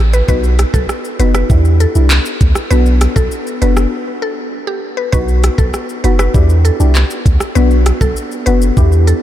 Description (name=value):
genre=dancehall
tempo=99 BPM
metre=4/4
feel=straight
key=unclear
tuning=A4 = 439 Hz
part: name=punchy sub bass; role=bass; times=0.0-9.1 s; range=F#1 to E2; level=-11 LUFS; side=equal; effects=none
part: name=mallet-like synth pluck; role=melody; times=0.1-9.2 s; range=G4 to B4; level=-21 LUFS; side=equal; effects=chorus, tape echo
part: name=afro-pop drum kit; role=drums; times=0.1-9.2 s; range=handclaps, hi-hat, kick drum, rim click, shaker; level=-17 LUFS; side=equal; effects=none
part: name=deep mellow chord stab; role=accompaniment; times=0.3-9.2 s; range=B3 to G4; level=-19 LUFS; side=left 3 dB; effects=chorus, sidechain pumping
room=light reverb, digital ambience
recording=none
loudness=-10 LUFS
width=side -12 dB against mid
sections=0.0-9.2 A section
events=break 3.9-5.1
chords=0.3 B; 1.5 Em7; 2.7 Bm; 3.9 N.C.; 5.1 B; 6.3 Em7; 7.6 Bm